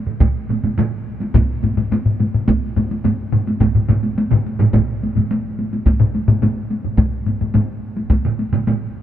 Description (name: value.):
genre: japanese traditional, taiko drum ensemble.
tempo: 106 BPM.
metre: 4/4.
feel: straight.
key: none.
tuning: none.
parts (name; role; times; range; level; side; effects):
taiko ensemble; percussion; 0.1-8.8 s; none; -22 LUFS; right 4 dB; none.
taiko ensemble; percussion; 0.2-8.8 s; none; -21 LUFS; equal; none.
taiko ensemble; percussion; 0.2-8.2 s; none; -20 LUFS; right 1 dB; none.
taiko ensemble; percussion; 1.3-7.7 s; none; -19 LUFS; left 2 dB; none.
room: moderate huge ambient reverb, RT60 7.6 s.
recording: none.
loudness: -16 LUFS.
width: side -11 dB against mid.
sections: 0.0-9.0 A section.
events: none.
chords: none.